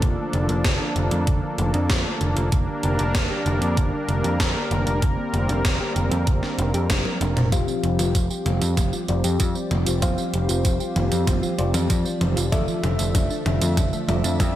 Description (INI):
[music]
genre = synthwave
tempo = 96 BPM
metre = 4/4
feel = straight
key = F major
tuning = A4 = 440 Hz
[part]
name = brassy analog pad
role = sustained chords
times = 0.0-14.6 s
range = D3 to E5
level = -27 LUFS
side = equal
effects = chorus, sidechain pumping
[part]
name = thumb-piano-like synth pluck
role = arpeggios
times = 0.0-14.5 s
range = D3 to Bb4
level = -30 LUFS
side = right 3 dB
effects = chorus, digital delay
[part]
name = overdriven picked electric bass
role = bass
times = 0.0-14.5 s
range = F1 to F2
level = -24 LUFS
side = equal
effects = sidechain pumping
[part]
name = electronic kick drum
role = drums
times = 0.0-14.5 s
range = none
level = -23 LUFS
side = equal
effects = small room ambience
[part]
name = gated 80s digital drum machine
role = drums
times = 0.0-14.5 s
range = hi-hat, snare drum, tambourine, toms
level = -27 LUFS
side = equal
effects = gated reverb, gated reverb snare, small room ambience
[part]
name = FM electric piano with soft pad layer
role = stabs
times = 7.5-14.6 s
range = F3 to F5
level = -28 LUFS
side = left 2 dB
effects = chorus, low-pass filter, digital delay
[sound]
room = light reverb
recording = none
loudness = -20 LUFS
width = side -13 dB against mid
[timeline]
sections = 0.0-7.5 A section; 7.5-14.6 B section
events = drum fill 6.9-7.5, 7.5-14.6; filter sweep on analog synth pad 7.5-14.6; filter sweep on FM electric piano 7.5-14.6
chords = 0.0 Bbmaj7/F; 2.5 Gm/F; 7.5 Fsus2; 12.5 Dmadd9/F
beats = | 0.02 0.65 1.27 1.90 | 2.52 3.15 3.77 4.40 | 5.02 5.65 6.27 6.90 | 7.52 8.15 8.77 9.40 | 10.02 10.65 11.27 11.90 | 12.52 13.15 13.77 14.40